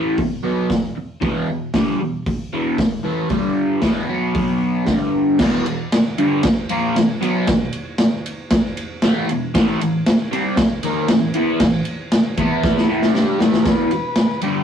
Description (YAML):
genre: garage rock duo or trio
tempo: 116 BPM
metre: 4/4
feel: straight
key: unclear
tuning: A4 = 436 Hz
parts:
  - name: crunchy overdriven guitar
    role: riff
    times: 0.0-14.6 s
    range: E2 to G4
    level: -19 LUFS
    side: equal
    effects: phaser
  - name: raw garage drum kit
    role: drums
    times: 0.2-14.5 s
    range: crash cymbal, hi-hat, kick drum, ride cymbal, snare drum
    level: -18 LUFS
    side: equal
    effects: none
  - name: overdriven combo organ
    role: melody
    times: 13.6-14.6 s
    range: G4 to B4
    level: -25 LUFS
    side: left 3 dB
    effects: tape echo
room: wet small room reverb, RT60 0.6 s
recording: rough rehearsal-room recording, warm saturation, cassette tape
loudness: -16 LUFS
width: side -8 dB against mid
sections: 0.0-5.4 A section; 5.4-13.7 B section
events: drum fill 12.6-13.7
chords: 0.0 E5; 3.3 G5; 3.8 E5; 4.1 B5; 4.9 G5; 5.4 E5; 9.5 A5; 12.4 E5; 12.9 A5; 13.7 E5